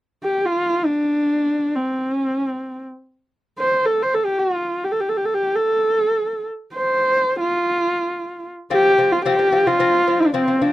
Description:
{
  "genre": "mongolian traditional, Mongolian folk",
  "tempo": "free time",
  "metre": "none",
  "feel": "none",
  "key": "F gong mode",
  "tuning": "A4 = 440 Hz",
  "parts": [
    { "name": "warm horsehead fiddle", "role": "melody", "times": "0.2-10.7 s", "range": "C4 to C5", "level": "-17 LUFS", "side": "equal", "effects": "none" },
    { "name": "lute", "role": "arpeggios", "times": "8.7-10.7 s", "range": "F3 to C4", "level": "-23 LUFS", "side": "left 6 dB", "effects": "none" }
  ],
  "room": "light reverb",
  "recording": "dry, close 1970s-style studio recording",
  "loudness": "-17 LUFS",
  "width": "side -15 dB against mid",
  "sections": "0.0-8.7 A section; 8.7-10.7 B section",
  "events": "none",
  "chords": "0.0 N.C.; 8.7 F5",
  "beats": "free time"
}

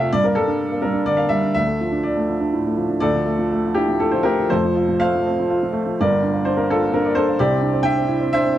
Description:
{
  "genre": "neoclassical minimalist piano",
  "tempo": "125 BPM",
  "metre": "3/4",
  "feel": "rubato",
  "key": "D minor",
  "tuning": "A4 = 441 Hz",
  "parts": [
    { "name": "clear upright piano", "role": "solo", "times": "0.0-8.6 s", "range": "F1 to G5", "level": "-17 LUFS", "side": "equal", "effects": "none" }
  ],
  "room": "little or no reverb",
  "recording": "dry, close 1970s-style studio recording",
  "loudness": "-17 LUFS",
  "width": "side -12 dB against mid",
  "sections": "0.0-3.0 A section; 3.0-8.6 B section",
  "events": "none",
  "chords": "0.1 Gm; 1.6 Dm; 4.5 F; 6.0 Gm; 7.4 Cadd9",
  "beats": "| 0.12 0.58 1.07 | 1.56 2.06 2.56 | 3.05 3.53 4.01 | 4.50 5.00 5.48 | 5.96 6.43 6.91 | 7.38 7.86 8.33"
}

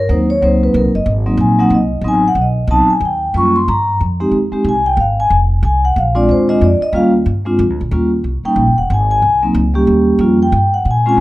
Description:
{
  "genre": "jazz",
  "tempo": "184 BPM",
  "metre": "3/4",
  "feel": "swing 61% on 8ths",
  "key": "Eb mixolydian",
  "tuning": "A4 = 440 Hz",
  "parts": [
    { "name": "vibraphone with soft mallets", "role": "accompaniment", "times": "0.0-11.2 s", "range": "Gb3 to Db6", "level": "-13 LUFS", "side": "equal", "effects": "none" },
    { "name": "upright bass", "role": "bass", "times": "0.0-11.2 s", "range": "Eb1 to Bb2", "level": "-16 LUFS", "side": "equal", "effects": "none" }
  ],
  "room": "light reverb",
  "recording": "dark, warm production",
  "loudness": "-11 LUFS",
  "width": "side -17 dB against mid",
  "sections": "0.0-7.9 A section; 7.9-11.2 A section",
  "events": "none",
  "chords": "0.1 Ab7; 2.0 Adim7; 3.0 Eb7; 4.0 Fm7; 6.0 Bb7; 6.9 Eb7; 7.6 Bb; 7.9 Eb7; 8.9 Ab; 9.9 Eb7",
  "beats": "| 0.09 0.41 0.74 | 1.06 1.39 1.72 | 2.04 2.37 2.69 | 3.02 3.35 3.67 | 4.00 4.33 4.65 | 4.98 5.30 5.63 | 5.96 6.28 6.61 | 6.93 7.26 7.59 | 7.91 8.24 8.56 | 8.89 9.22 9.54 | 9.87 10.20 10.52 | 10.85 11.18"
}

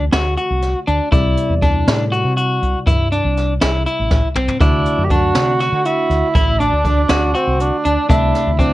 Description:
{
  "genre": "progressive instrumental, band music in an uneven meter",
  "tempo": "241 BPM (eighths)",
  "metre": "7/8",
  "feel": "straight",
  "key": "D mixolydian",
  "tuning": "A4 = 439 Hz",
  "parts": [
    { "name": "bell-like tine electric piano", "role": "accompaniment", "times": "0.0-8.7 s", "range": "C3 to E5", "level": "-24 LUFS", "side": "left 2 dB", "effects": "phaser" },
    { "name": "electric guitar at the edge of break-up", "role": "arpeggios", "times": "0.0-8.7 s", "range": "C4 to F#4", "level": "-19 LUFS", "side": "left 1 dB", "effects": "none" },
    { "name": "woody fretless electric bass", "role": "bass", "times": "0.0-8.7 s", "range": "A1 to D3", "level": "-19 LUFS", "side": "equal", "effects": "analog chorus" },
    { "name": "jazz brush drum kit", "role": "drums", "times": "0.1-8.7 s", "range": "hi-hat, kick drum, snare drum, toms", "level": "-18 LUFS", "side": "equal", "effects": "none" },
    { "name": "breathy alto saxophone", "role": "second line", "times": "4.6-8.7 s", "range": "C4 to G4", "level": "-18 LUFS", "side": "right 3 dB", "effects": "none" }
  ],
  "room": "light reverb",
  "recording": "worn, warbling old tape, cassette tape, warbly pitch drift",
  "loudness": "-14 LUFS",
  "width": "side -16 dB against mid",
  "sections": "0.0-8.7 A section",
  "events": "drum fill 4.1-4.6",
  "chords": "0.0 D; 1.1 Cadd9; 4.6 D; 8.1 Am/C",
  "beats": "0.13 0.38 0.62 0.88 | 1.12 1.37 1.62 1.87 2.12 2.37 2.62 | 2.87 3.12 3.37 3.62 3.87 4.11 4.36 | 4.61 4.86 5.11 5.36 5.61 5.86 6.10 | 6.35 6.60 6.85 7.10 7.35 7.59 7.84 | 8.09 8.34 8.59"
}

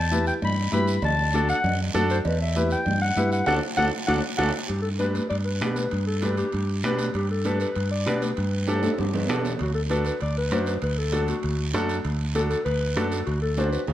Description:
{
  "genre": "latin, cumbia",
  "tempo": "196 BPM",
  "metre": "4/4",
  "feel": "straight",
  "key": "G major",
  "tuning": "A4 = 440 Hz",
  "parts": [
    { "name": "mellow clarinet", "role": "second line", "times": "0.0-13.9 s", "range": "F#4 to B5", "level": "-28 LUFS", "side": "left 2 dB", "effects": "none" },
    { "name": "fingered electric bass", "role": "bass", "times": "0.0-13.9 s", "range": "D2 to B2", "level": "-26 LUFS", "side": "equal", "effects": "none" },
    { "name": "bright upright piano", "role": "accompaniment", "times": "0.1-13.8 s", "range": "D4 to C5", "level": "-28 LUFS", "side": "equal", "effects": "none" },
    { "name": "congas", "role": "percussion", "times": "0.1-13.9 s", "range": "none", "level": "-32 LUFS", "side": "left 2 dB", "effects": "none" },
    { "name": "guiro", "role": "percussion", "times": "0.1-13.9 s", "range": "none", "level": "-38 LUFS", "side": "right 6 dB", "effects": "none" },
    { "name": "cowbell and timbales", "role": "percussion", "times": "0.4-13.9 s", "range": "none", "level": "-36 LUFS", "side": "right 5 dB", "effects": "none" }
  ],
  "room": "light reverb",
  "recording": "close, detailed microphones",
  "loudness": "-22 LUFS",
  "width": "side -12 dB against mid",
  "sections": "0.0-4.7 A section; 4.7-13.9 B section",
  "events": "clarinet solo 0.0-4.7, 4.7-13.9; band accent 3.5-4.7; drum fill 3.9-4.7, 8.7-9.6, 13.6-13.9",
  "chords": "0.0 Em; 1.0 D; 2.3 Em; 3.5 D; 4.7 G; 9.6 D",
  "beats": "0.12 0.42 0.73 | 1.03 1.34 1.64 1.95 | 2.25 2.56 2.87 3.17 | 3.48 3.78 4.09 4.39 | 4.70 5.00 5.31 5.62 | 5.92 6.23 6.54 6.84 | 7.15 7.45 7.76 8.07 | 8.37 8.68 8.99 9.29 | 9.60 9.90 10.21 10.52 | 10.82 11.13 11.44 11.74 | 12.05 12.35 12.66 12.96 | 13.27 13.58 13.88"
}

